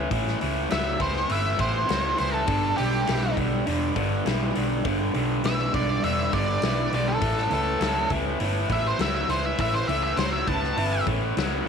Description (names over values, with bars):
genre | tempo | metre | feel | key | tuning
blues rock power trio and southern rock | 101 BPM | 4/4 | straight | A mixolydian | A4 = 442 Hz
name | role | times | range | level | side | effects
raw garage guitar | riff | 0.0-11.7 s | G2 to F#3 | -26 LUFS | equal | overdrive
hollow-body short-scale picked electric bass | bass | 0.0-11.7 s | E1 to C#2 | -29 LUFS | right 1 dB | none
big rock drum kit | drums | 0.1-11.5 s | hi-hat, kick drum, snare drum | -31 LUFS | left 5 dB | none
octave-fuzz lead guitar | melody | 0.7-11.1 s | G4 to A5 | -28 LUFS | right 1 dB | distortion
room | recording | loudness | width
light reverb, small room ambience | 1960s-style stereo | -22 LUFS | side -6 dB against mid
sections
0.0-11.7 A section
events
lead electric guitar solo 0.0-11.7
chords
0.0 A; 2.5 G; 7.2 A